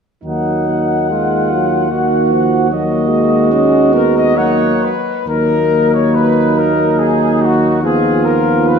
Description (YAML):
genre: classical, hymn-like piece for brass band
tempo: 71 BPM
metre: 3/4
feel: uneven beats, rubato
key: Eb minor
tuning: A4 = 440 Hz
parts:
  - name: warm flugelhorn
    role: second line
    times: 0.2-8.8 s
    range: Eb4 to Gb4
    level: -18 LUFS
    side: right 8 dB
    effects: none
  - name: clear trombone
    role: accompaniment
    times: 0.2-8.8 s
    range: Eb3 to Ab3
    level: -20 LUFS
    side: right 4 dB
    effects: none
  - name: warm euphonium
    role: accompaniment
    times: 0.2-8.8 s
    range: Bb3 to Db4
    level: -18 LUFS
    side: left 3 dB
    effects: none
  - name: mellow tuba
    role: bass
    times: 0.2-8.8 s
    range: Eb2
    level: -18 LUFS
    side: equal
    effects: none
  - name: warm trumpet section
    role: melody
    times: 0.3-8.8 s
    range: Gb4 to Gb5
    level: -17 LUFS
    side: left 5 dB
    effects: none
room: wet scoring stage reverb, RT60 1.9 s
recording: none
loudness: -11 LUFS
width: side -6 dB against mid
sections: 0.2-5.3 A section; 5.3-8.8 B section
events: none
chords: 0.2 Ebm; 7.8 Db13/Eb (rootless)